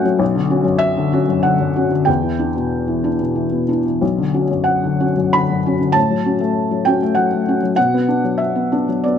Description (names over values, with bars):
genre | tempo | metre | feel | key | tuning
neoclassical minimalist piano | 86-100 BPM | 3/4 | rubato | B minor | A4 = 440 Hz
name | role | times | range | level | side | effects
felt-muted upright piano | solo | 0.0-9.2 s | B1 to B5 | -15 LUFS | left 2 dB | none
room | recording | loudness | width
light reverb | close, detailed microphones | -15 LUFS | side -8 dB against mid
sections
0.0-9.2 A section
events
none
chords
0.2 Bmadd9; 2.1 Em7; 4.0 Bmadd9; 6.0 F#m/A; 7.8 Bm